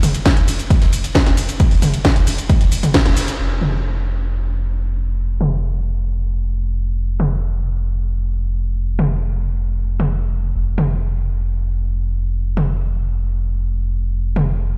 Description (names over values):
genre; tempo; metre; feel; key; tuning
driving peak-time techno; 134 BPM; 4/4; straight; unclear; A4 = 440 Hz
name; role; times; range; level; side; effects
saturated sub bass; bass; 0.0-14.8 s; F1; -22 LUFS; equal; sidechain pumping, low-pass filter
big rock drum kit; drums; 0.0-3.3 s; ride cymbal, snare drum; -36 LUFS; equal; none
techno drum kit; drums; 0.0-14.5 s; hi-hat, ride cymbal, shaker, snare drum, toms; -22 LUFS; equal; sidechain pumping on hats, low-pass filter on hats, sidechain pumping on cymbals, low-pass filter on cymbals, sidechain pumping on perc, low-pass filter on perc, sidechain pumping on toms, low-pass filter on toms, low-pass filter on snare, low-pass filter on room
electronic kick drum; drums; 0.3-3.0 s; none; -16 LUFS; equal; none
room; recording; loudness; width
light reverb; played on a big sound system in a bare room, large studio reverb; -19 LUFS; mono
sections
0.0-3.4 A section; 3.4-14.8 B section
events
drop 0.0-3.4; band accent 2.9; filter sweep on drum 3.4-14.8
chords
none